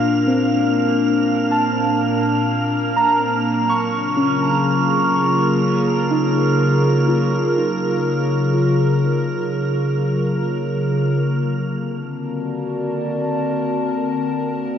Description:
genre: ambient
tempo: free time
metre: none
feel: none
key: unclear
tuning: A4 = 440 Hz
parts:
  - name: warbly tape-like pad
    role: sustained chords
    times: 0.0-14.8 s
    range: Bb2 to A5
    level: -18 LUFS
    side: equal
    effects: chorus, built-in reverb
  - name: muted felt-like synth keys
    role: arpeggios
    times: 0.0-11.3 s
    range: C4 to Db6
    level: -22 LUFS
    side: equal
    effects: chorus, phaser, tape echo
  - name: bowed-like drone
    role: drone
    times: 0.0-14.8 s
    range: Bb3 to Bb4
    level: -27 LUFS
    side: equal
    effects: built-in reverb
  - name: wind-like tuned noise texture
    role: texture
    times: 0.0-11.3 s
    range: F6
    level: -28 LUFS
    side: right 4 dB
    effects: built-in reverb
room: wet lush hall reverb, RT60 2.6 s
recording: none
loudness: -16 LUFS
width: side -8 dB against mid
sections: 0.0-11.3 A section; 11.3-14.8 B section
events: none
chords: 0.0 Bbmaj7; 3.5 Gbmaj7; 11.3 D7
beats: free time

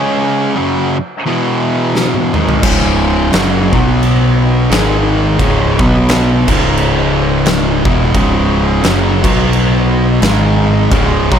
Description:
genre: stoner and doom metal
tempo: 87 BPM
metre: 4/4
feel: swing 58% on 8ths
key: C# minor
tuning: A4 = 440 Hz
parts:
  - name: fuzz guitar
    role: riff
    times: 0.0-11.4 s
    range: C#2 to C#4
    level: -12 LUFS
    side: equal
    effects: distortion
  - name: oversized low-tuned drum kit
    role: drums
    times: 2.0-11.4 s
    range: crash cymbal, kick drum, snare drum, toms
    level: -16 LUFS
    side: equal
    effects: none
  - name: growling picked electric bass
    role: bass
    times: 2.6-11.4 s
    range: C#1 to B1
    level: -16 LUFS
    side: equal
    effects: overdrive
room: small room ambience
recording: none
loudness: -10 LUFS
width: side -8 dB against mid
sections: 0.0-2.6 A section; 2.6-11.4 B section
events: break 0.0-2.6; drum fill 2.0-2.6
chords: 0.0 C#5; 1.3 E5; 2.3 G#5; 2.6 C#5; 3.7 B5; 4.7 G#5; 5.4 C#5; 5.7 B5; 6.4 C#m; 9.2 B5; 10.2 G#5; 10.9 C#5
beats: 0.58 1.26 1.95 | 2.64 3.33 4.02 4.71 | 5.40 6.08 6.77 7.46 | 8.15 8.84 9.53 10.22 | 10.91

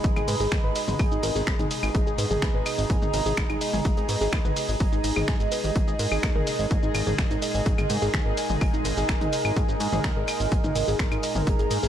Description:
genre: melodic techno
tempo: 126 BPM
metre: 4/4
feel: straight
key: G# minor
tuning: A4 = 440 Hz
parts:
  - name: lush unison pad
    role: sustained chords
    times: 0.0-11.9 s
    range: A#2 to G#4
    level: -32 LUFS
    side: right 1 dB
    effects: chorus, phaser, sidechain pumping
  - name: woody wave-folded pluck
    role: arpeggios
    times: 0.0-11.9 s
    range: D#4 to B5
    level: -32 LUFS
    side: equal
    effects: chorus, sidechain pumping, tape echo
  - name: fat analog bass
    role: bass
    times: 0.0-11.9 s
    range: G#1 to G#2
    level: -29 LUFS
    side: equal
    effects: sidechain pumping
  - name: breakbeat sampler-style drum kit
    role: drums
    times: 0.0-11.9 s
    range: hi-hat, snare drum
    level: -43 LUFS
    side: left 1 dB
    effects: none
  - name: electronic kick drum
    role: drums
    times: 0.0-11.6 s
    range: none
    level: -25 LUFS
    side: equal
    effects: overdrive
  - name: punchy analog drum machine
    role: drums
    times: 0.0-11.9 s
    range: claves, finger snaps, hi-hat, shaker, toms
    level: -30 LUFS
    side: left 1 dB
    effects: sidechain pumping on hats, sidechain pumping on perc, sidechain pumping on toms
  - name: warbly tape-like pad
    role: texture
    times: 0.0-11.9 s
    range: D#4 to B5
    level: -30 LUFS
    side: right 2 dB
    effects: chorus, built-in reverb, sidechain pumping
room: little or no reverb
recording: none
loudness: -22 LUFS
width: side -10 dB against mid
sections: 0.0-11.9 A section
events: none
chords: 0.0 G#m; 5.8 D#sus4/G#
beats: | 0.04 0.52 0.99 1.47 | 1.95 2.42 2.90 3.38 | 3.85 4.33 4.80 5.28 | 5.76 6.23 6.71 7.18 | 7.66 8.14 8.61 9.09 | 9.56 10.04 10.52 10.99 | 11.47

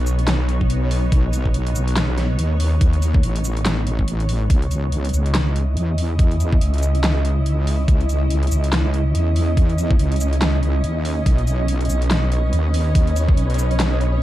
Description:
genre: deep dubstep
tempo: 142 BPM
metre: 4/4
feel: swing 58% on 16ths, half-time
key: C# minor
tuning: A4 = 439 Hz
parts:
  - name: granular cloud pad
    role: sustained chords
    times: 0.0-14.2 s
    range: B3 to D#5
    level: -27 LUFS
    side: right 1 dB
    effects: built-in reverb
  - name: wobble bass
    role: bass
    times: 0.0-14.2 s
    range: A1 to E2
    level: -18 LUFS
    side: equal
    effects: chorus
  - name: dubstep drum kit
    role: drums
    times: 0.1-14.1 s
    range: handclaps, hi-hat, shaker, snare drum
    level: -25 LUFS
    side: equal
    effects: overdrive
  - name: electronic kick drum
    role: drums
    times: 0.6-13.4 s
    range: none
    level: -17 LUFS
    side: equal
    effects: overdrive
  - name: flickering grainy texture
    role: texture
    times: 11.7-14.2 s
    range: C#4 to C#5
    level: -31 LUFS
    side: left 1 dB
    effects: built-in reverb
room: digital ambience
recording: dark, warm production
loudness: -16 LUFS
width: side -14 dB against mid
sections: 0.0-4.5 A section; 4.5-14.2 A section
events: drop 0.0-4.5, 4.5-14.2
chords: 0.0 Badd9; 4.5 C#madd9; 11.3 Badd9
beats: 0.28 0.70 | 1.12 1.54 1.97 2.39 | 2.81 3.23 3.65 4.08 | 4.50 4.92 5.35 5.77 | 6.19 6.61 7.04 7.46 | 7.88 8.30 8.73 9.15 | 9.57 9.99 10.42 10.84 | 11.26 11.68 12.11 12.53 | 12.95 13.37 13.80 14.22

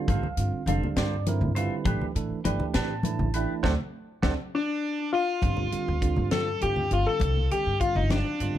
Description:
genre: electric jazz fusion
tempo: 67 BPM (dotted quarters)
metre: 6/8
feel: straight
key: unclear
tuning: A4 = 444 Hz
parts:
  - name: bell-like tine electric piano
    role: accompaniment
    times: 0.0-8.6 s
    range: D3 to A5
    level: -31 LUFS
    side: right 6 dB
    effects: phaser, plate reverb
  - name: clean electric guitar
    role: stabs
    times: 0.1-4.3 s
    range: Bb3 to C5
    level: -35 LUFS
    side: equal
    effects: wide subtle chorus, plate reverb
  - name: upright bass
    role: bass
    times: 0.1-8.6 s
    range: F1 to A2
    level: -28 LUFS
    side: equal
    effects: none
  - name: tight funk drum kit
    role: drums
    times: 0.1-8.5 s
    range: hi-hat, kick drum, snare drum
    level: -31 LUFS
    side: equal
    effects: none
  - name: congas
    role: percussion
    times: 0.1-8.6 s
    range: none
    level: -32 LUFS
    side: left 2 dB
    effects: none
  - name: dark concert grand piano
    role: melody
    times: 4.5-8.6 s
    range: D4 to A4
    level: -28 LUFS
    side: left 5 dB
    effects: plate reverb
  - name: cranked stack guitar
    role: second line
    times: 4.6-8.6 s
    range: D4 to A4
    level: -34 LUFS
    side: right 6 dB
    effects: overdrive, tape echo
room: light reverb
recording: dark, warm production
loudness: -24 LUFS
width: side -12 dB against mid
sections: 0.0-5.4 A section; 5.4-8.6 B section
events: band accent 3.6-5.4; drum fill 4.5-5.4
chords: 0.0 Gm11; 1.9 Am11; 3.6 D7; 5.4 G7sus4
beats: | 0.09 0.98 | 1.87 2.76 | 3.65 4.54 | 5.43 6.33 | 7.22 8.11

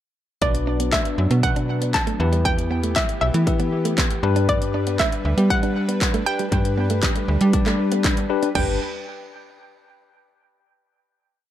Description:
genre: dance-pop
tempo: 118 BPM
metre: 4/4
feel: straight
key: G major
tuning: A4 = 440 Hz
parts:
  - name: hollow square pluck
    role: melody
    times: 0.4-8.8 s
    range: D5 to A5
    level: -26 LUFS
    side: right 1 dB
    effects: chorus, dub echo
  - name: bell-like tine electric piano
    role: accompaniment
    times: 0.4-8.8 s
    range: D4 to D5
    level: -27 LUFS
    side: moving between left 12 dB and left 2 dB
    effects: auto-pan, sidechain pumping, dub echo
  - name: soft supersaw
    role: sustained chords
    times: 0.4-8.8 s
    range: E3 to B4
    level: -30 LUFS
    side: equal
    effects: sidechain pumping
  - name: slap-like FM bass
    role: bass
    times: 0.4-8.8 s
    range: G1 to G3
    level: -22 LUFS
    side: equal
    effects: sidechain pumping
  - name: house drum kit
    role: drums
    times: 0.4-8.7 s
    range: crash cymbal, handclaps, hi-hat, kick drum, toms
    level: -23 LUFS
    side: equal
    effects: none
  - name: direct-recorded clean electric guitar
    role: riff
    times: 0.5-8.7 s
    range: G3 to D4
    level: -30 LUFS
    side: right 4 dB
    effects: analog chorus, dub echo
room: light reverb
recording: echo-heavy mix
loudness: -18 LUFS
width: side -11 dB against mid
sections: 0.4-8.6 chorus; 8.6-10.6 final chord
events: none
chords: 0.4 Bm; 2.2 Em; 4.2 G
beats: | 0.42 0.93 1.43 1.94 | 2.45 2.96 3.47 3.98 | 4.49 4.99 5.50 6.01 | 6.52 7.03 7.54 8.04 | 8.55

